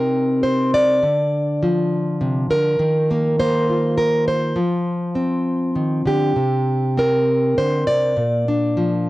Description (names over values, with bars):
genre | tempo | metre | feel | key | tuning
folk, solo fingerstyle acoustic guitar | 101 BPM | 3/4 | rubato | unclear | A4 = 441 Hz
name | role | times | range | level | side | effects
fingerpicked plugged-in steel-string acoustic guitar | solo | 0.0-9.1 s | Bb2 to D5 | -16 LUFS | equal | cassette tape
room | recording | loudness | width
light reverb | home recording on cassette | -16 LUFS | side -18 dB against mid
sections
0.0-9.1 A section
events
none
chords
0.0 Cm; 1.0 C9sus4; 2.8 Ebsus2; 4.6 F5; 6.4 C5; 8.2 Bb